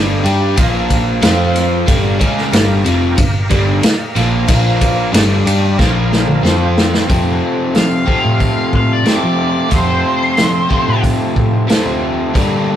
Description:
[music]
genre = blues rock power trio and southern rock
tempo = 92 BPM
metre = 4/4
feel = straight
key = unclear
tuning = A4 = 440 Hz
[part]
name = overdriven tonewheel organ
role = sustained chords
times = 0.0-7.1 s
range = F3 to C5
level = -25 LUFS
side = right 2 dB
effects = slow rotary speaker, chorus vibrato
[part]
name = crunchy overdriven guitar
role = riff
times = 0.0-12.8 s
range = F2 to G4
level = -16 LUFS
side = equal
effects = none
[part]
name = vintage muted picked electric bass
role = bass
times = 0.0-12.7 s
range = F1 to F3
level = -17 LUFS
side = equal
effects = none
[part]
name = vintage drum kit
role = drums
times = 0.3-12.5 s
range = hi-hat, kick drum, ride cymbal, snare drum, toms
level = -16 LUFS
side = equal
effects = none
[part]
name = octave-fuzz lead guitar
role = melody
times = 7.8-11.0 s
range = C5 to F5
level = -17 LUFS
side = equal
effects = wah, distortion
[sound]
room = light reverb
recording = rough rehearsal-room recording, warm saturation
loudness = -11 LUFS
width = side -10 dB against mid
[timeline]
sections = 0.0-7.1 A section; 7.1-12.8 B section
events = drum fill 5.8-7.1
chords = 0.0 Gm; 0.6 Bb5; 1.2 F5; 1.9 Gm; 4.5 Bb5; 5.1 Gm; 5.8 Bb5; 6.4 F5; 7.1 F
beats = 0.58 1.23 | 1.89 2.54 3.19 3.84 | 4.49 5.14 5.79 6.45 | 7.10 7.75 8.41 9.06 | 9.72 10.38 11.04 11.70 | 12.35

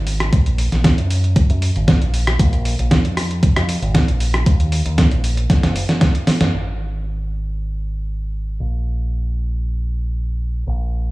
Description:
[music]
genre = nu-disco, nu disco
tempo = 116 BPM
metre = 4/4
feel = straight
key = unclear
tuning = A4 = 440 Hz
[part]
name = fingered electric bass with an envelope filter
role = bass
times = 0.0-11.1 s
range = F#1 to F#2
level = -19 LUFS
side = equal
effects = sidechain pumping
[part]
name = dusty soul sampler-style drum kit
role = drums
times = 0.1-6.5 s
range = hi-hat, rim click, snare drum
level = -19 LUFS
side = right 1 dB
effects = none
[part]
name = electronic kick drum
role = drums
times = 0.3-6.1 s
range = none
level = -15 LUFS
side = equal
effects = overdrive
[sound]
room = little or no reverb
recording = studio reverb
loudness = -16 LUFS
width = side -19 dB against mid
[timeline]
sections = 0.0-6.5 A section; 6.5-11.1 B section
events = drum fill 5.5-6.5; band accent 6.4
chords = none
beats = | 0.33 0.85 1.36 1.88 | 2.40 2.92 3.43 3.95 | 4.47 4.98 5.50 6.02 | 6.54 7.05 7.57 8.09 | 8.61 9.12 9.64 10.16 | 10.67

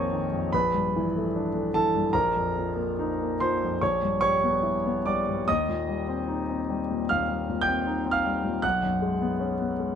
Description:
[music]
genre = classical, impressionist solo piano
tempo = 70-78 BPM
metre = 4/4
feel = rubato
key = unclear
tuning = A4 = 440 Hz
[part]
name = clear concert grand piano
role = solo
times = 0.0-10.0 s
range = Bb1 to G6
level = -24 LUFS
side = equal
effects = none
[sound]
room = moderate stone room reverb, RT60 1.3 s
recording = dark, warm production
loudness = -24 LUFS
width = side -8 dB against mid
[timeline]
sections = 0.0-10.0 A section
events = none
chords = 0.0 Bbmadd9; 0.5 G69/Bb; 2.1 Ebsus2/Bb; 3.8 G6/Bb; 5.5 Eb69; 8.6 Cbsus2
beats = 0.53 1.34 | 2.13 2.97 3.80 4.63 | 5.48 6.28 7.08 7.86 | 8.63 9.41

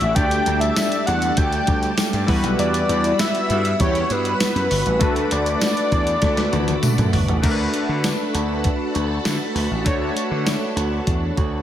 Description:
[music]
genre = 1980s-style pop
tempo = 99 BPM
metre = 4/4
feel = straight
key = unclear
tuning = A4 = 440 Hz
[part]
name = fat analog lead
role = melody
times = 0.0-7.1 s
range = A4 to G5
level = -23 LUFS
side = left 1 dB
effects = tape echo
[part]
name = warm analog keys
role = accompaniment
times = 0.0-11.6 s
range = G3 to D5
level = -26 LUFS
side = left 2 dB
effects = chorus
[part]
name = string machine, full ensemble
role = sustained chords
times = 0.0-11.6 s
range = G3 to E6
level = -30 LUFS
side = equal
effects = ensemble chorus
[part]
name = clean electric guitar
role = riff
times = 0.0-11.6 s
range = E3 to G4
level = -28 LUFS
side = right 4 dB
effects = ensemble chorus, tape echo
[part]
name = gritty slap bass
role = bass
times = 0.0-11.6 s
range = G1 to D3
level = -23 LUFS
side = equal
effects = overdrive
[part]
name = clean 12-bit digital drum machine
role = drums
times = 0.0-11.5 s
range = crash cymbal, hi-hat, kick drum, snare drum, tambourine, toms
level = -22 LUFS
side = equal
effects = gated reverb
[part]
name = tambourine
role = percussion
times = 0.8-10.6 s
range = none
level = -38 LUFS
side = left 6 dB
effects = none
[part]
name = mellow synth brass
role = stabs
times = 3.0-4.0 s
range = E3 to D5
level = -31 LUFS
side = left 1 dB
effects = chorus, phaser
[sound]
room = light reverb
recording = none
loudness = -18 LUFS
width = side -11 dB against mid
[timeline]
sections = 0.0-7.4 A section; 7.4-11.6 B section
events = drum fill 6.2-7.4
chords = 0.2 Gsus2/D; 2.3 Emadd9; 7.4 Bm7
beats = | 0.16 0.77 1.37 1.98 | 2.58 3.19 3.80 4.40 | 5.01 5.62 6.22 6.83 | 7.43 8.04 8.64 9.25 | 9.86 10.46 11.07

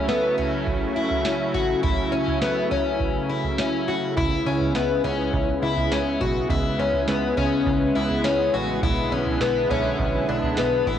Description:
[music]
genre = dream pop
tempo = 103 BPM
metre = 4/4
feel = straight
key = F# minor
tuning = A4 = 440 Hz
[part]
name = lush unison pad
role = sustained chords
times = 0.0-11.0 s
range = C#3 to E4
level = -25 LUFS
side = right 2 dB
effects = chorus, cassette tape, plate reverb
[part]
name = picked plugged-in twelve-string acoustic guitar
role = arpeggios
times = 0.0-11.0 s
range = B3 to F#4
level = -24 LUFS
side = left 5 dB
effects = wide subtle chorus, cassette tape, tape echo, plate reverb
[part]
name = booming analog drum machine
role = drums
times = 0.1-11.0 s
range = kick drum, snare drum, toms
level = -28 LUFS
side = right 2 dB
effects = cassette tape
[part]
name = plucky analog bass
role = bass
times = 4.2-11.0 s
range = A1 to C#2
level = -29 LUFS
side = right 2 dB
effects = none
[sound]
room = wet small room reverb, RT60 0.5 s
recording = home recording on cassette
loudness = -20 LUFS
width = side -9 dB against mid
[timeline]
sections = 0.0-11.0 A section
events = none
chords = 0.0 F#m7; 4.2 C#m7; 8.8 E7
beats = 0.09 0.67 1.25 | 1.84 2.42 3.00 3.58 | 4.17 4.75 5.33 5.92 | 6.50 7.08 7.66 8.24 | 8.83 9.41 9.99 10.57

